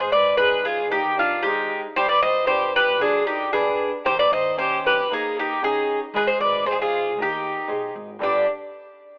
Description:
greek folk, Greek bouzouki band; 115 BPM; 4/4; straight; G phrygian dominant; A4 = 440 Hz
Greek bouzouki; melody; 0.0-8.5 s; F4 to Eb5; -20 LUFS; equal
clear violin; second line; 0.0-8.5 s; D4 to C5; -26 LUFS; equal
flamenco guitar; accompaniment; 0.0-8.4 s; G2 to G5; -28 LUFS; equal
upright bass; bass; 0.0-8.4 s; G1 to Eb2; -42 LUFS; equal
moderate plate reverb, RT60 3.0 s; telephone sound; -18 LUFS; side -33 dB against mid
0.0-8.2 A section
0.0 Ab; 2.0 G; 4.1 Eb7; 6.1 Ab; 8.2 G

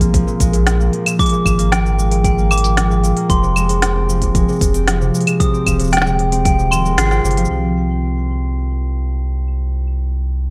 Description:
folktronica; 114 BPM; 4/4; straight; A4 = 437 Hz
concert harp; arpeggios; 0.0-10.1 s; Bb2 to F4; -21 LUFS; equal; delay
warm sub bass; bass; 0.0-10.5 s; Eb1 to C2; -20 LUFS; equal; tube saturation
electronic kick drum; drums; 0.0-6.6 s; -20 LUFS; equal
organic electronic drum kit; drums; 0.0-10.0 s; cabasa, claves, hi-hat, snare drum; -23 LUFS; equal; low-pass filter on perc, low-pass filter on hats, low-pass filter on snare, low-pass filter on room
glockenspiel with soft plastic mallets; second line; 1.2-7.2 s; G5 to C7; -25 LUFS; equal; delay
little or no reverb; -16 LUFS; mono
0.0-7.5 A section; 7.5-10.5 B section
band accent 7.0
0.0 Bb7(no3); 3.3 Fm7; 7.5 N.C.

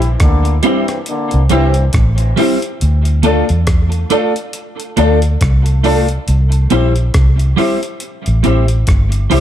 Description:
roots reggae; 69 BPM; 4/4; swing 57% on 16ths; A4 = 445 Hz
clear trombone section; second line; 0.0-1.9 s; G2 to E4; -21 LUFS; left 1 dB; tape echo
vintage muted fingered electric bass; bass; 0.0-9.4 s; G1 to E2; -12 LUFS; equal
breakbeat sampler-style drum kit; drums; 0.0-9.4 s; hi-hat, kick drum, rim click; -17 LUFS; equal
semi-hollow electric guitar; accompaniment; 0.6-9.4 s; G3 to A4; -18 LUFS; right 3 dB; ensemble chorus, tape echo
clear grand piano; stabs; 0.6-9.4 s; E4 to D5; -20 LUFS; left 5 dB
little or no reverb; -11 LUFS; side -11 dB against mid
0.0-9.4 A section
0.0 C; 2.8 Dm; 6.3 C

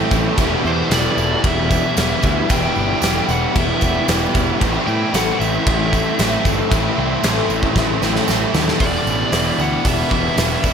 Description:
rock, shoegaze and dream pop; 114 BPM; 4/4; straight; E minor; A4 = 440 Hz
picked twelve-string acoustic guitar; arpeggios; 0.0-10.7 s; G4 to B4; -29 LUFS; left 8 dB; analog chorus, diffuse ambient delay
biting overdriven guitar; riff; 0.0-10.7 s; E2 to E4; -22 LUFS; right 8 dB; reverse reverb
biting overdriven guitar; riff; 0.0-10.7 s; A2 to B4; -24 LUFS; equal
thick fuzz guitar; riff; 0.0-10.7 s; E2 to A3; -24 LUFS; left 7 dB; distortion, analog chorus
fuzz picked electric bass; bass; 0.1-10.7 s; E1 to A2; -22 LUFS; equal; overdrive
gated 80s drum kit; drums; 0.1-10.7 s; crash cymbal, hi-hat, kick drum, snare drum; -21 LUFS; equal
tambourine; percussion; 0.1-10.7 s; -33 LUFS; right 14 dB
biting lead guitar; melody; 0.7-10.7 s; C5 to G5; -24 LUFS; left 1 dB; overdrive, diffuse ambient delay
moderate huge ambient reverb, RT60 8.2 s; dreamy mix soaked in reverb; -15 LUFS; side -7 dB against mid
0.0-8.8 A section; 8.8-10.7 B section
drum fill 7.8-8.8
0.4 Em; 4.6 Am7; 8.8 Em7

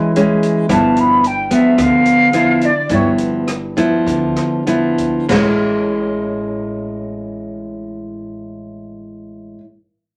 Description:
bossa nova; 94-111 BPM; 4/4; straight; A major; A4 = 442 Hz
nylon-string guitar; accompaniment; 0.0-9.6 s; G2 to E4; -18 LUFS; equal
open jazz drum kit; drums; 0.2-5.4 s; crash cymbal, hi-hat, kick drum, rim click, snare drum; -28 LUFS; equal
mellow concert flute; melody; 0.7-3.1 s; C#5 to B5; -17 LUFS; equal
upright bass; bass; 0.7-9.5 s; G1 to D2; -32 LUFS; equal
wet club ambience, RT60 0.5 s; -15 LUFS; mono
0.0-5.3 A section; 5.3-10.2 B section
flute solo 0.0-5.3; slowing down 0.7-5.3
0.0 Amaj7 (rootless); 0.7 G6; 5.3 Amaj7

